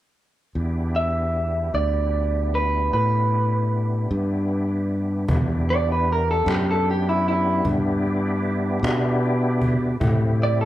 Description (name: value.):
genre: slow blues.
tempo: 51 BPM (dotted quarters).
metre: 12/8.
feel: straight.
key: E minor.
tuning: A4 = 440 Hz.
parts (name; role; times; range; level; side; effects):
bright tonewheel organ; sustained chords; 0.6-10.7 s; A3 to G4; -28 LUFS; equal; chorus vibrato, slow rotary speaker.
modern bright fingered electric bass; bass; 0.6-10.7 s; D2 to B2; -22 LUFS; equal; none.
electric guitar through a small old amp; melody; 1.0-10.7 s; E4 to E5; -23 LUFS; right 2 dB; none.
cajon; drums; 5.3-10.5 s; none; -27 LUFS; equal; none.
room: light reverb.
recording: band playing live in one room.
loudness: -20 LUFS.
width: side -14 dB against mid.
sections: 0.6-5.3 A section; 5.3-10.7 B section.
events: clean electric guitar solo 5.3-10.7.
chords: 0.6 Em7; 10.0 Am7.